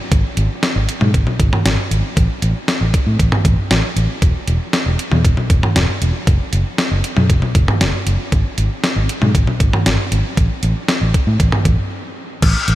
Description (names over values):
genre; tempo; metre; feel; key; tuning
synth-pop; 117 BPM; 4/4; straight; unclear; A4 = 439 Hz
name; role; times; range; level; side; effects
vintage muted fingered electric bass; bass; 0.1-12.8 s; E1 to A2; -16 LUFS; equal; none
clean 12-bit digital drum machine; drums; 0.1-12.8 s; crash cymbal, hi-hat, kick drum, snare drum, toms; -16 LUFS; equal; none
room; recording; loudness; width
light reverb; none; -14 LUFS; side -15 dB against mid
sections
0.0-12.4 A section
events
break 11.9-12.4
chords
none